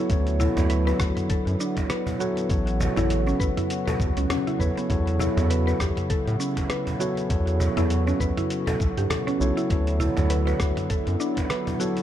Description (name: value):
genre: organic downtempo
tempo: 100 BPM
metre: 4/4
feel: swing 57% on 16ths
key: unclear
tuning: A4 = 439 Hz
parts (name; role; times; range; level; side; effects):
- mellow tine electric piano; accompaniment; 0.0-12.0 s; F#3 to C#5; -29 LUFS; moving between left 1 dB and right 6 dB; auto-pan, sidechain pumping, ping-pong delay
- warm analog pad; sustained chords; 0.0-12.0 s; C#3 to F#4; -32 LUFS; left 1 dB; chorus, sidechain pumping
- mallet-like synth pluck; arpeggios; 0.0-11.9 s; B3 to B4; -29 LUFS; left 1 dB; chorus, ping-pong delay
- round analog bass; bass; 0.1-11.2 s; A1 to A2; -24 LUFS; equal; sidechain pumping
- dusty soul sampler-style drum kit; drums; 0.1-12.0 s; hi-hat, rim click, shaker, toms; -33 LUFS; equal; small room reverb
- electronic kick drum; drums; 0.1-11.5 s; none; -27 LUFS; equal; small room reverb
- cajon; percussion; 0.4-11.8 s; none; -34 LUFS; right 1 dB; none
room: light reverb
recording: dark, warm production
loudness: -22 LUFS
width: side -11 dB against mid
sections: 0.0-12.0 A section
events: none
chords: 0.1 D69; 2.5 A69; 4.9 Esus2; 7.3 A13/E; 9.7 D69